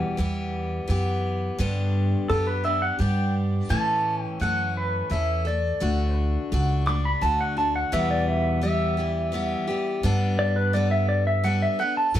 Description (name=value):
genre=honky-tonk and classic country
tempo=85 BPM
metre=3/4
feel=straight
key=unclear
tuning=A4 = 439 Hz
part: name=picked steel-string acoustic guitar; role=accompaniment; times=0.0-12.2 s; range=E2 to A4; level=-28 LUFS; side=left 1 dB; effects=none
part: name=upright bass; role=bass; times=0.2-12.2 s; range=C#2 to A2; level=-25 LUFS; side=right 1 dB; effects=none
part: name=pedal steel guitar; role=melody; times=2.3-12.2 s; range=A4 to D6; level=-25 LUFS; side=equal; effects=none
room=light reverb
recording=none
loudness=-22 LUFS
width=side -11 dB against mid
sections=0.0-12.2 A section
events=pedal steel guitar solo 0.0-12.2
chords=0.0 Em; 1.6 G; 3.7 A; 5.8 D; 7.9 Em; 10.0 Gadd9